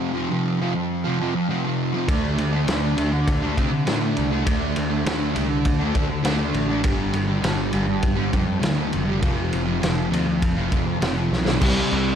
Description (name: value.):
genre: rock, shoegaze and dream pop.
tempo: 101 BPM.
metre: 4/4.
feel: straight.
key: unclear.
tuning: A4 = 445 Hz.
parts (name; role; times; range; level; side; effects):
fuzz guitar; riff; 0.0-12.2 s; F2 to D4; -22 LUFS; equal; distortion, wide subtle chorus.
picked electric bass; bass; 2.1-12.1 s; F1 to C3; -26 LUFS; equal; none.
loose indie drum kit; drums; 2.1-12.1 s; crash cymbal, kick drum, ride cymbal, snare drum; -25 LUFS; equal; none.
room: small room reverb.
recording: dark, warm production.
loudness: -20 LUFS.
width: side -8 dB against mid.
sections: 0.0-11.6 A section.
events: drum fill 11.3.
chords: 0.0 F5; 2.1 D5; 6.9 G5; 9.2 F5; 11.6 C5.